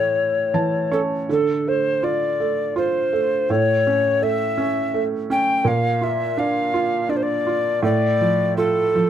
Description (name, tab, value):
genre	children's music, lullaby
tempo	82 BPM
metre	3/4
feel	rubato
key	D minor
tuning	A4 = 441 Hz
part	mellow hollow alto recorder	melody	0.0-9.1 s	A4 to G5	-20 LUFS	left 2 dB	none
part	felt-muted upright piano	accompaniment	0.0-9.1 s	A2 to A5	-22 LUFS	right 4 dB	none
room	light reverb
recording	none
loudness	-18 LUFS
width	side -10 dB against mid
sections	0.0-1.3 A section; 1.3-9.1 B section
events	felt piano fill 0.1-1.3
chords	0.0 A; 1.3 Dm; 3.5 A; 5.7 Bb; 7.8 Dm/A